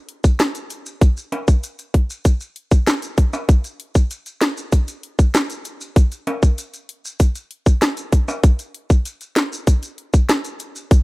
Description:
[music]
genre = dancehall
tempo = 97 BPM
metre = 4/4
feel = straight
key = none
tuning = none
[part]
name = island pop drum kit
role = drums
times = 0.1-11.0 s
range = hi-hat, kick drum, rim click, snare drum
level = -14 LUFS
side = equal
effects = none
[part]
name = maracas and timbales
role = percussion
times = 0.2-11.0 s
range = none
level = -30 LUFS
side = equal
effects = none
[sound]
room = little or no reverb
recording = rough home demo mix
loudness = -17 LUFS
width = side -23 dB against mid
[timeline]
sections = 0.0-11.0 A section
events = none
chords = none

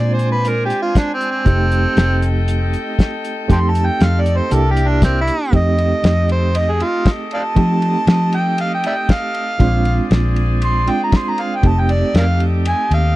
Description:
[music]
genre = straight-eighth soul blues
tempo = 118 BPM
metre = 4/4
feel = straight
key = F mixolydian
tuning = A4 = 440 Hz
[part]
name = overdriven harmonica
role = melody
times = 0.0-13.2 s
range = C4 to C6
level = -20 LUFS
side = right 1 dB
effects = none
[part]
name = reed electric piano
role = accompaniment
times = 0.0-13.2 s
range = Ab3 to G4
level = -23 LUFS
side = right 5 dB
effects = fast tremolo
[part]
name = bright horn section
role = sustained chords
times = 0.0-13.2 s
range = G4 to Ab5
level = -28 LUFS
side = left 2 dB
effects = none
[part]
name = vintage muted fingered electric bass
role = bass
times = 0.0-13.1 s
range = F1 to F3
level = -16 LUFS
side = left 1 dB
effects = none
[part]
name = cloth-damped thuddy drum kit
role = drums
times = 0.2-13.0 s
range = hi-hat, kick drum, ride cymbal, snare drum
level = -15 LUFS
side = left 1 dB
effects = none
[sound]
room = little or no reverb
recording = dry, close 1970s-style studio recording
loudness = -14 LUFS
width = side -17 dB against mid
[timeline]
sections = 0.0-5.5 A section; 5.5-13.2 A section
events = harmonica solo 0.0-13.2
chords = 0.0 Bb9; 1.5 F9; 4.5 C9; 5.5 F9; 9.6 Bb9; 11.6 F9

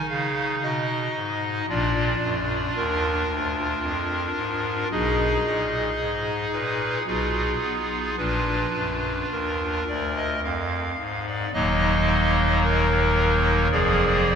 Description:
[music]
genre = classical, chorale-style piece for pipe organ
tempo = 55 BPM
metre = 3/4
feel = uneven beats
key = unclear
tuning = A4 = 442 Hz
[part]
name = pipe organ, clarinet reed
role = solo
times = 0.0-14.4 s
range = Eb1 to F5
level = -21 LUFS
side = equal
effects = none
[sound]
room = wet church reverb, RT60 3.3 s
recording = minimal, uncompressed stereo recording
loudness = -21 LUFS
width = side -7 dB against mid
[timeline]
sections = 0.0-11.6 A section; 11.6-14.4 B section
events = none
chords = 0.0 Abm; 1.7 Bb; 4.9 Abm/Cb; 7.1 Fm7b5/Cb; 8.2 Bb; 11.6 Ebm; 13.7 Bb7/F

